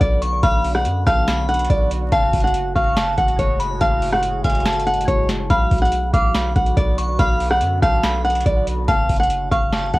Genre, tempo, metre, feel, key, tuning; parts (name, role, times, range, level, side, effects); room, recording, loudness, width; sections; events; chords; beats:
hip hop, trap; 142 BPM; 4/4; half-time; A4 = 436 Hz
flamenco guitar; melody; 0.0-10.0 s; C#5 to F#5; -20 LUFS; equal; low-pass filter, cassette tape, analog delay
glassy synth bell; second line; 0.0-10.0 s; G#5 to D6; -26 LUFS; equal; chorus, phaser, analog delay
deep dark ambient pad; sustained chords; 0.0-10.0 s; A2 to F#4; -29 LUFS; right 2 dB; chorus, built-in reverb
long sustained 808-style bass; bass; 0.0-10.0 s; F#1 to F#2; -23 LUFS; equal
booming analog drum machine; drums; 0.0-10.0 s; hi-hat, kick drum, rim click, snare drum; -20 LUFS; equal; cassette tape
light reverb; home recording on cassette, vinyl crackle; -16 LUFS; side -20 dB against mid
0.0-10.0 A section
0.0 Bm; 2.1 F#madd9; 5.5 Bm; 8.9 F#madd9
0.01 | 0.43 0.85 1.27 1.70 | 2.12 2.54 2.96 3.39 | 3.81 4.23 4.66 5.08 | 5.50 5.92 6.35 6.77 | 7.19 7.61 8.04 8.46 | 8.88 9.30 9.73